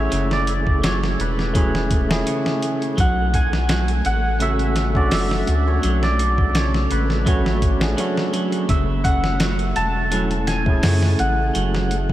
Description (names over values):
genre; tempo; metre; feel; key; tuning
trip hop; 84 BPM; 4/4; swing 53% on 16ths; F# minor; A4 = 436 Hz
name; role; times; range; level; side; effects
hammered dulcimer; melody; 0.0-12.1 s; B4 to A5; -25 LUFS; right 1 dB; dub echo
tine electric piano; accompaniment; 0.0-12.1 s; A3 to A4; -25 LUFS; equal; harmonic tremolo, tape echo
soft dub sub bass; bass; 0.0-12.1 s; E1 to F#2; -22 LUFS; equal; none
flickering grainy texture; texture; 0.3-12.1 s; A3 to A4; -32 LUFS; left 1 dB; none
clean electric guitar; arpeggios; 0.1-11.9 s; C#3 to F#3; -28 LUFS; right 2 dB; dub echo
dusty soul sampler-style drum kit; drums; 0.1-12.1 s; hi-hat, kick drum, snare drum; -23 LUFS; equal; none
room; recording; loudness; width
moderate huge ambient reverb, RT60 8.2 s; dreamy mix soaked in reverb, vinyl crackle; -17 LUFS; side -14 dB against mid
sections
0.0-12.1 A section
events
none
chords
0.0 F#m7; 3.0 Bm7; 8.7 F#m7